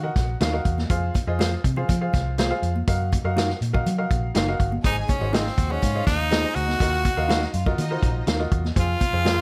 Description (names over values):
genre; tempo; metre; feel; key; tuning
uptempo 1960s-style soul; 122 BPM; 4/4; straight; Eb dorian; A4 = 440 Hz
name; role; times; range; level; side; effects
raspy tenor saxophone; melody; 0.0-0.1, 4.9-9.4 s; C4 to Gb4; -28 LUFS; equal; none
clear grand piano; accompaniment; 0.0-9.4 s; Ab2 to Gb5; -32 LUFS; equal; none
vintage muted fingered electric bass; bass; 0.0-9.4 s; Gb1 to Gb3; -28 LUFS; equal; none
vintage drum kit; drums; 0.2-9.4 s; hi-hat, kick drum, snare drum; -27 LUFS; equal; none
mellow electric guitar; stabs; 0.4-9.4 s; Eb4 to F5; -31 LUFS; equal; subtle chorus
congas; percussion; 0.4-9.4 s; none; -38 LUFS; equal; none
rich studio violin section; second line; 4.8-8.2 s; Eb4 to Ab5; -35 LUFS; equal; none
room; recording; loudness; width
light reverb; none; -23 LUFS; mono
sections
0.0-4.8 A section; 4.8-9.4 A section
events
none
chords
0.0 Ebmadd9; 0.9 Fm; 2.9 Ebmadd9/Gb; 4.8 Ab; 6.8 Ebmadd9; 8.8 Fm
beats
0.41 | 0.90 1.40 1.89 2.38 | 2.88 3.37 3.86 4.35 | 4.84 5.34 5.83 6.32 | 6.81 7.30 7.79 8.28 | 8.76 9.25